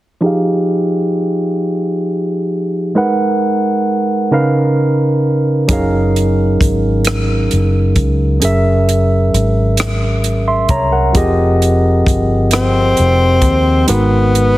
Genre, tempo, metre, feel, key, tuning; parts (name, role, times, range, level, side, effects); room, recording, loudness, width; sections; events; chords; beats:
slow six-eight R&B; 44 BPM (dotted quarters); 6/8; straight; A4 = 440 Hz
barky tine electric piano; accompaniment; 0.2-14.6 s; Db3 to C6; -14 LUFS; right 1 dB; overdrive, low-pass filter
vintage muted fingered electric bass; bass; 5.7-14.6 s; F1 to Eb2; -14 LUFS; equal
compact cocktail drum kit; drums; 5.7-14.5 s; hi-hat, kick drum, rim click; -17 LUFS; equal
breathy tenor saxophone; melody; 12.5-14.6 s; Cb4 to C4; -13 LUFS; left 1 dB
moderate echo chamber reverb, RT60 2.3 s; heavily compressed radio sound, multiband compression; -11 LUFS; side -16 dB against mid
0.2-11.1 A section; 11.1-14.6 B section
filter sweep on tine electric piano 0.2-11.1
0.2 Fm9; 3.0 Abm7; 4.3 Db13; 5.7 Gbmaj13; 8.4 Gb9; 11.1 Fm9; 13.9 Abm7
| 0.23 1.59 | 2.96 4.32 | 5.68 7.05 | 8.41 9.78 | 11.14 12.50 | 13.87